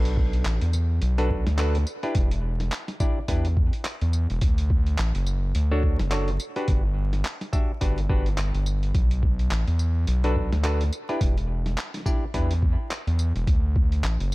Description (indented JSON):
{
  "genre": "glitch hop",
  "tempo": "106 BPM",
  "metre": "4/4",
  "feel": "swing 58% on 16ths",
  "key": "B minor",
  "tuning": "A4 = 442 Hz",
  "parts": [
    { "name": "mellow clav", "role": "stabs", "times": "0.0-12.5 s", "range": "D4 to E5", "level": "-31 LUFS", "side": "equal", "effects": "sidechain pumping, tape echo" },
    { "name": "gritty driven synth bass", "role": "bass", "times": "0.0-14.3 s", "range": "E1 to E2", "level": "-23 LUFS", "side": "equal", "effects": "tube saturation" },
    { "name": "boom bap sampler-style drum kit", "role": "drums", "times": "0.1-14.3 s", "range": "handclaps, hi-hat, snare drum, tambourine", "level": "-34 LUFS", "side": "equal", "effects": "none" },
    { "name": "electronic kick drum", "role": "drums", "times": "0.2-13.9 s", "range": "none", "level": "-24 LUFS", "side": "equal", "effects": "none" }
  ],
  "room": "little or no reverb",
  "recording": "dark, warm production, vinyl crackle",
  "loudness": "-22 LUFS",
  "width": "side -20 dB against mid",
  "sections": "0.0-14.3 A section",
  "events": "none",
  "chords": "0.0 Bm7; 2.2 Em7; 4.4 Dmaj7; 6.7 Gmaj7; 8.9 Bm7; 11.2 Em7; 13.5 D",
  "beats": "0.46 1.02 1.59 | 2.15 2.72 3.29 3.85 | 4.42 4.98 5.55 6.12 | 6.68 7.25 7.81 8.38 | 8.95 9.51 10.08 10.64 | 11.21 11.78 12.34 12.91 | 13.47 14.04"
}